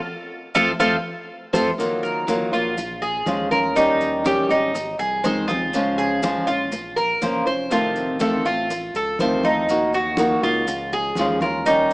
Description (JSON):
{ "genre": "latin, Cuban son and guajira", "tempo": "122 BPM", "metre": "4/4", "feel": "straight", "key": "unclear", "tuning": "A4 = 440 Hz", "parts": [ { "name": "Cuban tres", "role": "arpeggios", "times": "0.5-11.9 s", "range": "Eb4 to C5", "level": "-21 LUFS", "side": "right 1 dB", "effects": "none" }, { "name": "flamenco guitar", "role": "accompaniment", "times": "0.6-11.9 s", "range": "C3 to C5", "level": "-22 LUFS", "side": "equal", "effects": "none" }, { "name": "round analog bass", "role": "bass", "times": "0.6-11.9 s", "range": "F1 to F2", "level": "-35 LUFS", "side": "equal", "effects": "none" }, { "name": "congas", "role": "percussion", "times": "0.6-11.9 s", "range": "none", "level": "-32 LUFS", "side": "equal", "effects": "none" }, { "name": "maracas", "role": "percussion", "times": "0.6-11.9 s", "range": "none", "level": "-39 LUFS", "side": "left 1 dB", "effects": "none" } ], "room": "moderate plate reverb, RT60 2.8 s", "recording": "small speaker sound", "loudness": "-18 LUFS", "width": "side -26 dB against mid", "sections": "0.0-1.8 A section; 1.8-11.9 B section", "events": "band accent 0.0-1.8", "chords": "0.0 F; 1.8 Ebmadd9; 2.8 Bbm7; 3.8 Eb7; 4.7 Ab; 5.7 Db; 6.7 Bbmadd9; 7.7 F7; 9.7 Ebm; 10.7 Db" }